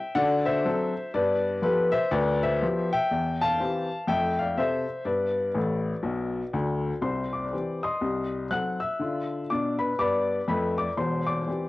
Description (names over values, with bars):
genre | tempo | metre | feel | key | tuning
jazz, stride piano | 122 BPM | 4/4 | swing 60% on 8ths | C major | A4 = 437 Hz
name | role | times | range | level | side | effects
clear upright piano | solo | 0.0-11.7 s | E1 to Gb6 | -24 LUFS | left 2 dB | cassette tape
room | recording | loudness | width
moderate spring reverb, RT60 1.9 s, small room ambience | home recording on cassette | -24 LUFS | side -18 dB against mid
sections
0.0-7.0 A section; 7.0-11.7 B section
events
upright piano fill 5.6-7.0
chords
0.2 D7; 1.1 G9; 2.1 G7/D; 3.1 C/E; 4.1 F; 5.1 G; 7.0 C; 8.0 Cdim7; 9.0 G7; 11.0 C/E